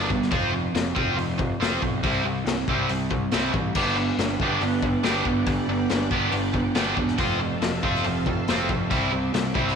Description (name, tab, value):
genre	indie rock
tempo	140 BPM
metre	4/4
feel	straight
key	G major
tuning	A4 = 439 Hz
part	raw garage guitar	riff	0.0-9.8 s	F3 to G4	-24 LUFS	right 1 dB	overdrive
part	fuzz picked electric bass	bass	0.0-9.7 s	E1 to C2	-30 LUFS	right 1 dB	overdrive
part	raw garage drum kit	drums	0.1-9.7 s	crash cymbal, hi-hat, kick drum, snare drum	-27 LUFS	left 3 dB	none
part	string machine, violins	sustained chords	3.8-9.8 s	B3 to F#5	-33 LUFS	right 1 dB	ensemble chorus
room	moderate echo chamber reverb, RT60 1.6 s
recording	1960s-style stereo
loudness	-21 LUFS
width	side -6 dB against mid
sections	0.0-3.8 A section; 3.8-9.8 A section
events	none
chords	0.3 F5; 2.0 C; 3.8 Gmaj7; 7.2 Fmaj7; 8.9 Cadd9